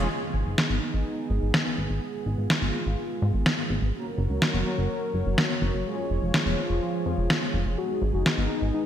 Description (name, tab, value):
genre	italo disco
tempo	125 BPM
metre	4/4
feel	straight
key	G# dorian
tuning	A4 = 440 Hz
part	warm analog pad	sustained chords	0.0-8.9 s	E#3 to C#5	-31 LUFS	equal	chorus
part	mellow synth brass	stabs	0.0-8.9 s	G#3 to A#4	-35 LUFS	right 3 dB	chorus, ping-pong delay
part	chorused synth bass	bass	0.0-8.7 s	E#1 to G#2	-26 LUFS	equal	none
part	electronic snare drum	drums	0.6-8.4 s	none	-27 LUFS	equal	overdrive, gated reverb
part	soft octave-layered synth lead	melody	7.8-8.9 s	D#4 to F#4	-32 LUFS	left 9 dB	chorus, ping-pong delay
room	moderate lush hall reverb, RT60 2.2 s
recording	bright 1980s-style digital production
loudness	-24 LUFS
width	side -10 dB against mid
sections	0.1-8.9 A section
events	filter sweep on analog polysynth 0.1-8.9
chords	0.1 G#m; 3.9 F#; 5.9 C#/E#; 7.8 G#m